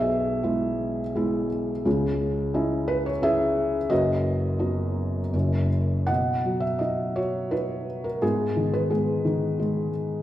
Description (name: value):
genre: classical, lyrical solo piano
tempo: 86 BPM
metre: 3/4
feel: rubato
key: B major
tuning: A4 = 442 Hz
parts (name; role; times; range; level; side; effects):
- felt-muted upright piano; solo; 0.0-10.2 s; F#1 to F#5; -23 LUFS; equal; none
room: wet recital hall reverb, RT60 1.7 s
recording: heard from further back in the room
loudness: -23 LUFS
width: side -13 dB against mid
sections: 0.0-6.1 A section; 6.1-10.2 B section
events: none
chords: 0.0 E/B; 1.9 C#madd9; 3.9 B/F#; 6.1 B; 8.2 G#m